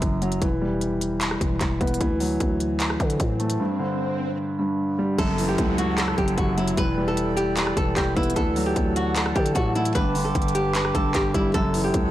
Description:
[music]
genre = hip hop, trap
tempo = 151 BPM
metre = 4/4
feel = half-time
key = F# phrygian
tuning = A4 = 440 Hz
[part]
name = dark baby grand piano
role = accompaniment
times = 0.0-12.1 s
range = F#2 to B3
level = -25 LUFS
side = equal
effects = none
[part]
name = growling 808-style bass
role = bass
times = 0.0-12.1 s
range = E1 to D3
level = -28 LUFS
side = equal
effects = none
[part]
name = trap drum kit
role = drums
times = 0.0-12.0 s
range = handclaps, hi-hat, kick drum, rim click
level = -26 LUFS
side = equal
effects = none
[part]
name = swell and downlifter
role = sound effects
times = 3.1-8.4 s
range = none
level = -34 LUFS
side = right 1 dB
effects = none
[part]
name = flamenco guitar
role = melody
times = 5.2-12.1 s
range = E4 to B4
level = -26 LUFS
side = equal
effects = none
[part]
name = breathy mellow small flute group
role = sustained chords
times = 5.2-12.1 s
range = B4 to E6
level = -32 LUFS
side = right 2 dB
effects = none
[sound]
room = light reverb, small room ambience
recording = blown-out, overdriven recording, overdrive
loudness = -21 LUFS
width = side -13 dB against mid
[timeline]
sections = 0.0-5.2 A section; 5.2-12.1 B section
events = swell 3.1-5.2; break 3.6-5.2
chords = 0.4 Em; 2.0 Dadd9; 3.6 G5; 5.2 F#m7; 6.8 Em7; 8.4 Dadd9; 10.0 Gadd9; 11.5 F#m7

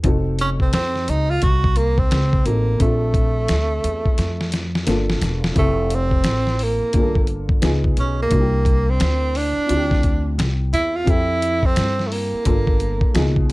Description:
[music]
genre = hip hop, jazz-hop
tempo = 87 BPM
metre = 4/4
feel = swing 63% on 16ths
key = unclear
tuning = A4 = 440 Hz
[part]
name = dark upright piano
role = accompaniment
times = 0.0-13.5 s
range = B2 to A4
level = -26 LUFS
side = left 1 dB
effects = plate reverb
[part]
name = upright bass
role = bass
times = 0.0-13.5 s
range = E1 to G2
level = -21 LUFS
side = equal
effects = none
[part]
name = dusty soul sampler-style drum kit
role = drums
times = 0.0-13.5 s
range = hi-hat, kick drum, snare drum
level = -20 LUFS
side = equal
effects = none
[part]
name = breathy tenor saxophone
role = melody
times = 0.4-13.5 s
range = A3 to Gb4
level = -22 LUFS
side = right 2 dB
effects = plate reverb
[sound]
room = light reverb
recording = dark, warm production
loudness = -16 LUFS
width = side -21 dB against mid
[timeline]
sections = 0.0-5.6 A section; 5.6-13.5 B section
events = drum fill 4.2-5.6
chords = 0.0 F7b9; 2.8 Bbmaj9; 4.9 Gm7; 5.6 Fmaj9; 6.9 Gm7; 7.6 C#9; 8.3 C9; 9.7 Dm11; 11.1 Fmaj9; 12.5 Gm7

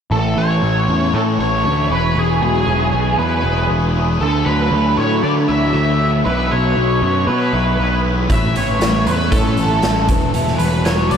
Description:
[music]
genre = psychedelic rock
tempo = 117 BPM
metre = 4/4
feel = straight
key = E mixolydian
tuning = A4 = 440 Hz
[part]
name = octave-fuzz lead guitar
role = melody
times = 0.1-11.2 s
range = G#4 to E5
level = -19 LUFS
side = equal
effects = wah, distortion, diffuse ambient delay
[part]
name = fuzz guitar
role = riff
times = 0.1-11.2 s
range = A2 to A4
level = -20 LUFS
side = left 1 dB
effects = distortion, phaser
[part]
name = fuzz picked electric bass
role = bass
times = 0.1-11.2 s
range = E1 to D3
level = -18 LUFS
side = equal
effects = overdrive
[part]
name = raw garage drum kit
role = drums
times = 8.3-11.2 s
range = hi-hat, kick drum, snare drum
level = -19 LUFS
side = equal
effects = none
[sound]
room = wet huge ambient reverb, RT60 8.2 s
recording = dreamy mix soaked in reverb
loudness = -14 LUFS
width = side -7 dB against mid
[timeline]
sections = 0.1-11.2 A section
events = none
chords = 0.1 A; 1.9 Eadd9; 4.2 Dadd9; 6.3 Bsus4; 8.3 A; 10.1 Esus2

